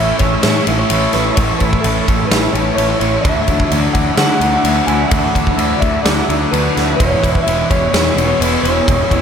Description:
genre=rock, shoegaze and dream pop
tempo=128 BPM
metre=4/4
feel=straight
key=A major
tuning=A4 = 440 Hz
part: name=clean electric guitar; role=melody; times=0.0-9.2 s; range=A4 to G#5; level=-19 LUFS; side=equal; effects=lush chorus, diffuse ambient delay
part: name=granular cloud pad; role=sustained chords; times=0.0-9.2 s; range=C#5 to F#6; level=-26 LUFS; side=equal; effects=built-in reverb, wide subtle chorus
part: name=picked twelve-string acoustic guitar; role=arpeggios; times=0.0-9.2 s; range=E3 to A4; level=-26 LUFS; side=right 8 dB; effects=none
part: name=thick fuzz guitar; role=riff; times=0.0-9.2 s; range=E2 to D4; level=-20 LUFS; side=left 7 dB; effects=distortion, lush chorus
part: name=twangy electric guitar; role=riff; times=0.0-9.2 s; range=E2 to E4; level=-20 LUFS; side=right 7 dB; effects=reverse reverb
part: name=growling picked electric bass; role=bass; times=0.0-9.2 s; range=E1 to D3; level=-20 LUFS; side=equal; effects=overdrive
part: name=huge arena drum kit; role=drums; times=0.2-9.2 s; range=kick drum, ride cymbal, snare drum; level=-17 LUFS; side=equal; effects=none
room=wet lush hall reverb, RT60 1.7 s, studio ambience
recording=dreamy mix soaked in reverb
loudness=-12 LUFS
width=side -7 dB against mid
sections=0.0-9.2 A section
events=none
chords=0.0 A; 3.3 Dadd9; 7.0 E6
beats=0.44 0.91 | 1.38 1.85 2.31 2.78 | 3.25 3.72 4.19 4.66 | 5.12 5.59 6.06 6.53 | 7.00 7.47 7.94 8.41 | 8.88

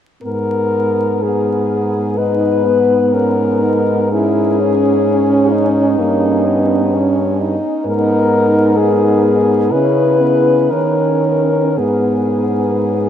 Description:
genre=classical, lyrical piece for horn quartet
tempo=62 BPM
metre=4/4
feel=uneven beats, rubato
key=G# minor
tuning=A4 = 440 Hz
part: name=warm French horn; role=melody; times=0.2-13.1 s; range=D#4 to B4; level=-16 LUFS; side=left 4 dB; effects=none
part: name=dark French horn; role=second line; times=0.2-13.1 s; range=B3 to E4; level=-19 LUFS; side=right 4 dB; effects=none
part: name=mellow French horn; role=bass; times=0.2-13.1 s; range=G2 to D#3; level=-18 LUFS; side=right 2 dB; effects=none
part: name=warm French horn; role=accompaniment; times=2.2-13.1 s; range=A#3 to E4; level=-18 LUFS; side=left 1 dB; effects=none
room=wet huge ambient reverb, RT60 7.9 s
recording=in a vast, echoing space, vinyl crackle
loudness=-12 LUFS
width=side -9 dB against mid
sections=0.2-13.1 A section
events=none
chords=0.2 G#m; 4.1 C#madd9/G#; 6.0 D#7/G; 7.9 G#m; 9.7 C#m; 10.7 D#5; 11.8 G#m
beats=| 0.23 1.22 2.17 3.14 | 4.12 5.06 5.99 6.94 | 7.87 8.78 9.72 10.72 | 11.78 12.89

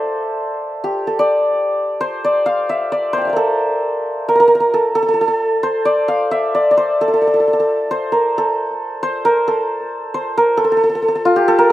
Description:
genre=indian classical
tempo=133 BPM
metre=4/4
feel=straight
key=D raga darbari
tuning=A4 = 441 Hz
part: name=santur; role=solo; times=0.0-11.7 s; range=F4 to A5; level=-14 LUFS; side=equal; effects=slapback echo
room=light reverb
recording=recorded outdoors, with no room sound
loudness=-14 LUFS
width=side -14 dB against mid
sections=0.0-10.6 A section; 10.6-11.7 B section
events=speeding up 0.0-11.7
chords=none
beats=0.15 0.61 1.07 | 1.53 1.99 2.45 2.91 | 3.37 3.82 4.28 4.73 | 5.19 5.64 6.09 6.54 | 7.00 7.45 7.89 8.34 | 8.79 9.24 9.69 10.13 | 10.58 11.02 11.47

